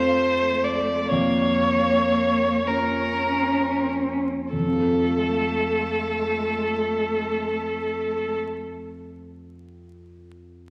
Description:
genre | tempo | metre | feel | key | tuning
classical, slow romantic movement for piano quartet | 30-47 BPM (dotted quarters) | 6/8 | rubato | F major | A4 = 440 Hz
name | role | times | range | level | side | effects
rich violin | melody | 0.0-8.4 s | A4 to D5 | -26 LUFS | equal | none
rich cello | second line | 0.0-8.3 s | A3 to Db4 | -30 LUFS | equal | none
dark concert grand piano | accompaniment | 0.0-10.7 s | F2 to F5 | -31 LUFS | equal | none
room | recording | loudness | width
wet recital hall reverb, RT60 1.8 s | vinyl crackle | -23 LUFS | mono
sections
0.0-4.5 A section; 4.5-8.0 B section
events
slowing down 0.0-4.5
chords
0.0 F; 1.1 Bbm/F; 4.5 F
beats
| 1.11 2.67 | 4.53 6.27

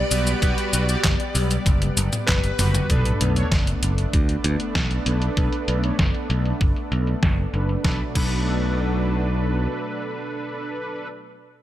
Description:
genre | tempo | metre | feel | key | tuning
synthwave | 97 BPM | 4/4 | straight | B minor | A4 = 441 Hz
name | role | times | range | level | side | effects
clear electric grand piano | melody | 0.0-2.9 s | B4 to D5 | -33 LUFS | left 1 dB | digital delay
string machine, violins | second line | 0.0-2.9 s | B4 to D5 | -32 LUFS | equal | ensemble chorus, tape echo
analog string pad | sustained chords | 0.0-11.1 s | B2 to F#5 | -29 LUFS | equal | ensemble chorus, sidechain pumping
modern bright picked electric bass | bass | 0.0-9.7 s | F#1 to D2 | -22 LUFS | equal | none
analog synth brass | stabs | 0.1-11.1 s | D4 to D5 | -30 LUFS | right 1 dB | chorus, tape echo
detuned 8-bit digital drum machine | drums | 0.1-8.3 s | cabasa, crash cymbal, handclaps, hi-hat, snare drum, toms | -25 LUFS | equal | low-pass filter on hats, low-pass filter on perc, low-pass filter on snare, low-pass filter on toms, low-pass filter on cymbals, low-pass filter on room
electronic kick drum | drums | 0.4-8.3 s | none | -23 LUFS | equal | none
sub drop | sound effects | 2.9-5.4 s | none | -29 LUFS | equal | none
room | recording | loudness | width
digital ambience | none | -20 LUFS | side -13 dB against mid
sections
0.0-2.9 A section; 2.9-7.8 B section; 7.8-10.3 C section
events
drum fill 1.7-2.9; impact 2.9-5.4; filter sweep on drum 2.9-7.8; filter sweep on analog polysynth 2.9-7.8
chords
0.0 Gmaj7; 2.9 Bm7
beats
| 0.42 1.04 1.66 2.28 | 2.90 3.52 4.13 4.75 | 5.37 5.99 6.61 7.23 | 7.84 8.46 9.08 9.70

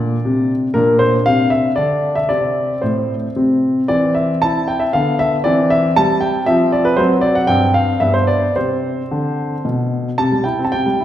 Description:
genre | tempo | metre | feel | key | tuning
classical-period piano sonatina | 115 BPM | 3/4 | rubato | C major from 3.9 s | A4 = 440 Hz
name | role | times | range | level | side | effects
clear grand piano | solo | 0.0-11.0 s | G2 to A5 | -14 LUFS | equal | none
room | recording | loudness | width
wet recital hall reverb, RT60 1.7 s | heard from further back in the room | -14 LUFS | side -11 dB against mid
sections
0.0-10.2 A section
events
none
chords
0.0 Bbadd9; 2.3 Amadd11; 3.4 N.C.; 3.9 C/E; 4.9 Dm69; 5.5 C/E; 6.5 Dm13/F; 7.0 D7/F#; 7.5 C5/G; 8.0 G; 8.6 Csus2; 10.2 C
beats
0.25 | 0.77 1.27 1.78 | 2.30 2.83 3.36 | 3.89 4.42 4.94 | 5.46 5.97 6.48 | 6.99 7.50 8.01 | 8.56 9.11 9.64 | 10.18 10.71

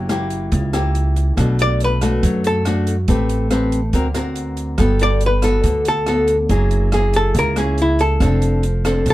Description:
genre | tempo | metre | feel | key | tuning
bossa nova | 140 BPM | 4/4 | straight | unclear | A4 = 440 Hz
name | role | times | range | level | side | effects
nylon-string guitar | accompaniment | 0.0-9.1 s | B2 to B4 | -20 LUFS | left 1 dB | none
upright bass | bass | 0.0-9.1 s | F1 to F#2 | -18 LUFS | right 1 dB | none
open jazz drum kit | drums | 0.1-9.1 s | hi-hat, kick drum, rim click | -25 LUFS | right 1 dB | none
archtop guitar, miked and amplified | melody | 1.6-9.1 s | C#4 to D5 | -20 LUFS | equal | none
room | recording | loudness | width
light reverb | none | -15 LUFS | side -16 dB against mid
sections
0.0-9.1 A section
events
hollow-body jazz guitar solo 0.0-9.1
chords
0.0 F#7b9; 1.4 Bm7; 3.1 Am9; 3.9 Daug7; 4.8 Gmaj9; 6.5 F#9; 8.2 F6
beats
0.09 0.52 0.94 | 1.37 1.80 2.23 2.65 | 3.08 3.51 3.93 4.36 | 4.79 5.21 5.64 6.07 | 6.50 6.92 7.35 7.78 | 8.21 8.63 9.06

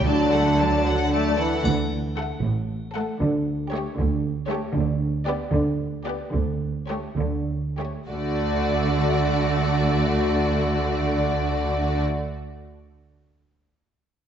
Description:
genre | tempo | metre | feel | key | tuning
cinematic, playful, whimsical film cue | 64-78 BPM (dotted quarters) | 6/8 | straight | D major | A4 = 439 Hz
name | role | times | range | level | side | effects
clear studio violin section | melody | 0.0-12.0 s | C#5 to A5 | -30 LUFS | left 2 dB | none
rich studio violin section | second line | 0.0-12.0 s | F#4 to D5 | -29 LUFS | left 3 dB | none
clear studio viola section | accompaniment | 0.0-12.0 s | E3 to B3 | -31 LUFS | equal | none
mellow French horn section | sustained chords | 0.0-1.3 s | F#3 to D4 | -28 LUFS | left 2 dB | none
rich studio cello section | bass | 0.0-12.0 s | A2 to D3 | -26 LUFS | right 2 dB | none
rich studio double bass section | bass | 0.0-12.0 s | A1 to D2 | -26 LUFS | right 3 dB | none
dark clarinet | second line | 0.1-1.4 s | D4 | -25 LUFS | right 1 dB | none
triangle | percussion | 1.7-2.7 s | none | -39 LUFS | left 4 dB | none
room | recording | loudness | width
moderate scoring stage reverb, RT60 1.6 s | nothing above 7.8 kHz | -21 LUFS | side -9 dB against mid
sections
0.0-1.6 A section; 1.6-8.1 B section; 8.1-11.8 C section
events
slowing down 4.0-8.1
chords
0.1 D; 3.2 A7/D; 4.8 G/D; 6.3 A7/D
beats
| 0.05 0.85 | 1.65 2.44 | 3.21 3.98 | 4.75 5.53 | 6.34 7.19 | 8.10 9.03 | 9.95 10.87

